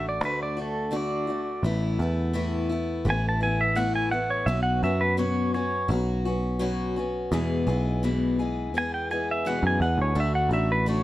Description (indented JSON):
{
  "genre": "folk rock and heartland rock",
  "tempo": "84 BPM",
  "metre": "4/4",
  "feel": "straight",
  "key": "E mixolydian",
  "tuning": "A4 = 440 Hz",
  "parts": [
    { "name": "pedal steel guitar", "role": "melody", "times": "0.0-11.0 s", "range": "A4 to A5", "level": "-27 LUFS", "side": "right 1 dB", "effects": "plate reverb" },
    { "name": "picked steel-string acoustic guitar", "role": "accompaniment", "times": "0.0-11.0 s", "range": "E2 to G#4", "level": "-28 LUFS", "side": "left 2 dB", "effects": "none" },
    { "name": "picked electric bass", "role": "bass", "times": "0.0-11.0 s", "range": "A1 to F#2", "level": "-27 LUFS", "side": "equal", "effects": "none" }
  ],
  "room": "light reverb",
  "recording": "dark, warm production",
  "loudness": "-23 LUFS",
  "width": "side -15 dB against mid",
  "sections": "0.0-11.0 A section",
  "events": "pedal steel guitar solo 0.0-11.0",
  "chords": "0.0 D; 1.6 Asus2; 4.5 Bsus2; 7.3 E; 10.2 D",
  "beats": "0.23 0.94 | 1.65 2.35 3.06 3.78 | 4.49 5.20 5.91 6.62 | 7.33 8.04 8.75 9.46 | 10.17 10.88"
}